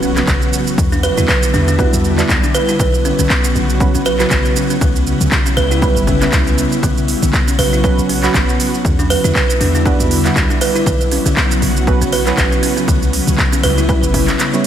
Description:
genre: afro house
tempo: 119 BPM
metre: 4/4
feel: swing 56% on 16ths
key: B minor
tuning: A4 = 440 Hz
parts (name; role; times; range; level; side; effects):
- ethereal airy pad; sustained chords; 0.0-14.7 s; C#3 to F#4; -20 LUFS; equal; ensemble chorus, built-in reverb, sidechain pumping
- buzzing kalimba; arpeggios; 0.0-14.5 s; B3 to B4; -19 LUFS; right 2 dB; sidechain pumping, tape echo
- deep mellow chord stab; stabs; 0.0-14.7 s; F#3 to C#5; -22 LUFS; right 3 dB; chorus, sidechain pumping, tape echo
- warm 808-style bass; bass; 0.0-14.3 s; G1 to E2; -18 LUFS; equal; sidechain pumping
- afro-pop drum kit; drums; 0.0-14.7 s; handclaps, hi-hat, shaker, toms; -20 LUFS; right 1 dB; none
- sub drop; sound effects; 0.0-0.8 s; none; barely audible; none; none
- electronic kick drum; drums; 0.3-14.3 s; none; -17 LUFS; equal; none
room: moderate lush hall reverb, RT60 1.9 s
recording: dreamy mix soaked in reverb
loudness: -12 LUFS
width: side -10 dB against mid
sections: 0.0-14.7 A section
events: impact 0.0-0.8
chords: 0.0 Bsus2; 0.8 Em7; 2.8 Bsus2; 4.8 C#m7b5; 6.8 Bsus2; 8.8 Em7; 10.9 Bsus2; 12.9 C#m7b5

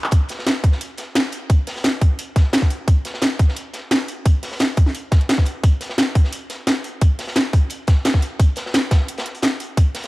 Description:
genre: drum and bass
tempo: 174 BPM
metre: 4/4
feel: straight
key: none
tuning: none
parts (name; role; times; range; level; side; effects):
- drum and bass drum kit; drums; 0.0-10.1 s; handclaps, hi-hat, snare drum; -21 LUFS; equal; overdrive, studio reverb
- crunchy breakbeat drum kit; drums; 0.1-10.1 s; hi-hat, snare drum; -29 LUFS; equal; high-pass filter on hats, studio reverb, high-pass filter on snare, high-pass filter on room
- electronic kick drum; drums; 0.1-9.8 s; none; -14 LUFS; equal; overdrive, studio reverb
room: little or no reverb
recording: dark, warm production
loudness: -16 LUFS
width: side -20 dB against mid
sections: 0.0-10.1 A section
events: none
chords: none

